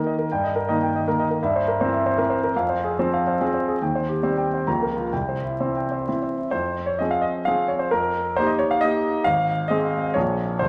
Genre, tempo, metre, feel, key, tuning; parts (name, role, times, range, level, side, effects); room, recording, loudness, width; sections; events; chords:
classical, romantic triple-time dance for piano with dotted rhythms; 120-166 BPM; 3/4; rubato; F minor; A4 = 444 Hz
clear grand piano; solo; 0.0-10.7 s; Ab1 to Bb5; -23 LUFS; equal
wet recital hall reverb, RT60 1.5 s; vinyl crackle, nothing above 11.0 kHz; -23 LUFS; mono
0.0-6.5 A section; 6.5-10.7 B section
0.3 Eb/G; 1.4 C7/G; 2.6 Fm; 3.8 Cm/Eb; 4.7 Bbm/Db; 5.1 C; 6.5 Fm; 7.9 Eb/F; 9.3 Ab; 10.2 Bbm7